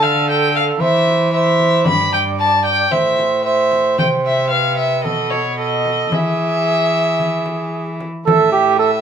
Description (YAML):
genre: classical, renaissance-style consort dance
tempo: 113 BPM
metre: 4/4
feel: straight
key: A minor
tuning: A4 = 440 Hz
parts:
  - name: dark violin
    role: melody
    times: 0.0-9.0 s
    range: C#5 to B5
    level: -17 LUFS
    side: left 2 dB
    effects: none
  - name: dark cor anglais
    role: second line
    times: 0.0-8.9 s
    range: G4 to D5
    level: -18 LUFS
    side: right 5 dB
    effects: none
  - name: rich cello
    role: bass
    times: 0.0-9.0 s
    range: G2 to E3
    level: -22 LUFS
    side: left 1 dB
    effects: none
  - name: frame drum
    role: percussion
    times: 0.8-8.5 s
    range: none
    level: -23 LUFS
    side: left 2 dB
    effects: none
room: wet stone room reverb, RT60 1.0 s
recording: minimal, uncompressed stereo recording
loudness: -14 LUFS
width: side -8 dB against mid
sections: 0.0-8.3 A section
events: none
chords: 0.0 D5; 0.8 C/E; 1.9 G5; 2.9 Am; 4.0 Cmaj7; 5.0 B7; 6.1 E; 8.3 A5